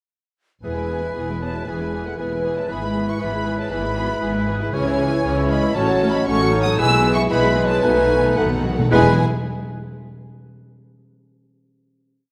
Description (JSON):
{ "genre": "classical, dramatic, fast romantic movement for symphony orchestra", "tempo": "116 BPM", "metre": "4/4", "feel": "rubato", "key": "E major", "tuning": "A4 = 440 Hz", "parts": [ { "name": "warm symphonic violin section", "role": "melody", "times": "0.6-9.2 s", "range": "F#5 to E6", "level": "-29 LUFS", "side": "equal", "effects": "none" }, { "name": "mellow hollow concert flute", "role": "second line", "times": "0.6-9.2 s", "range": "A4 to G#5", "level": "-30 LUFS", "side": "equal", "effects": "none" }, { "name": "warm clarinet", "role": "second line", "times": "0.6-9.1 s", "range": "C#4 to E4", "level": "-31 LUFS", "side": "equal", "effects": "none" }, { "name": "warm oboe", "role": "second line", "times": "0.6-9.1 s", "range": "B4 to C#5", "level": "-31 LUFS", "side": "equal", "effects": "none" }, { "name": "warm symphonic violin section", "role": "second line", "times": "0.6-9.2 s", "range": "C#4 to C#5", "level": "-33 LUFS", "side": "equal", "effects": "none" }, { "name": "mellow bassoon", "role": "accompaniment", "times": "0.6-9.1 s", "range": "E3 to A3", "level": "-30 LUFS", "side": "equal", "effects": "none" }, { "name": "rich symphonic viola section", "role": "accompaniment", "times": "0.6-9.2 s", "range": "E3 to E4", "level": "-31 LUFS", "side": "equal", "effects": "none" }, { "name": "mellow French horn section", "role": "sustained chords", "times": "0.6-9.1 s", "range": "B3 to B4", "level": "-28 LUFS", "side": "equal", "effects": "none" }, { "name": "rich symphonic double bass section", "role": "bass", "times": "0.6-9.2 s", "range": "E1 to C#2", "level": "-28 LUFS", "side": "equal", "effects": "none" }, { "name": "warm symphonic cello section", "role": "bass", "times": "0.6-9.2 s", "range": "E2 to C#3", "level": "-29 LUFS", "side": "equal", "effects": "none" }, { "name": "timpani", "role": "percussion", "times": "6.8-9.2 s", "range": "E2 to B2", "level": "-28 LUFS", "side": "equal", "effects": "none" } ], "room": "moderate scoring stage reverb, RT60 2.0 s", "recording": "none", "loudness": "-20 LUFS", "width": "mono", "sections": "0.6-8.9 A section; 8.9-11.0 final chord", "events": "timpani fill 7.8-8.9", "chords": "0.6 E; 2.7 E/G#; 4.7 C#m; 5.8 F#m/A; 6.8 E/B; 7.8 B7; 8.9 E", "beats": "| 0.64 1.16 1.68 2.19 | 2.70 3.21 3.71 4.23 | 4.73 5.24 5.76 6.28 | 6.79 7.32 7.84 8.38 | 8.92" }